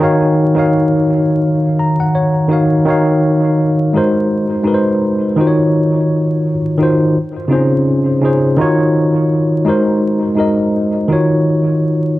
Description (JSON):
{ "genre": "hip hop", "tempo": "84 BPM", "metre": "4/4", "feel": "swing 57% on 16ths", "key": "Eb dorian", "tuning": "A4 = 440 Hz", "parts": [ { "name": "tine electric piano", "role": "solo", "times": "0.0-12.2 s", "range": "Db3 to Bb5", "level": "-11 LUFS", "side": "equal", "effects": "overdrive, fast stereo tremolo, cassette tape, analog delay" } ], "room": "moderate spring reverb, RT60 1.3 s", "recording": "dark, warm production, vinyl crackle", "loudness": "-11 LUFS", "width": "side -16 dB against mid", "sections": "0.0-2.9 A section; 2.9-12.2 B section", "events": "tine electric piano fill 1.4-2.9", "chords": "0.0 Ebm9; 3.9 Ab7; 5.4 Ebm9; 7.2 Dbmaj9; 8.6 Ebm9; 9.7 Ab7; 11.1 Ebm9" }